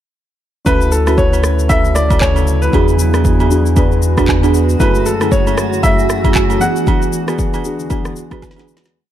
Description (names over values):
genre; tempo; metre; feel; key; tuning
amapiano; 116 BPM; 4/4; swing 58% on 16ths; unclear; A4 = 440 Hz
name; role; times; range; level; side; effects
soft electric-piano-like synth keys; accompaniment; 0.6-9.0 s; F#2 to B4; -19 LUFS; left 1 dB; chorus
clear baby grand piano; melody; 0.7-8.4 s; A4 to F#5; -19 LUFS; equal; tape echo
granular cloud pad; sustained chords; 1.6-8.9 s; E2 to F#4; -22 LUFS; right 3 dB; built-in reverb
deep mellow chord stab; stabs; 0.7-8.7 s; C#4 to A4; -20 LUFS; right 3 dB; chorus, phaser, tape echo
punchy sub bass; bass; 0.7-4.8 s; D2 to E2; -14 LUFS; equal; none
afro-pop drum kit; drums; 0.7-9.0 s; handclaps, kick drum, rim click, shaker, snare drum; -16 LUFS; equal; none
agogo bells and woodblock; percussion; 0.7-8.7 s; none; -26 LUFS; right 9 dB; none
room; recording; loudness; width
little or no reverb; dark, warm production; -11 LUFS; side -11 dB against mid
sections
0.7-8.9 groove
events
fade-out 6.9-8.9; drum fill 8.4-8.9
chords
0.7 Dmaj9; 2.7 E9; 4.8 F#m7; 6.6 E9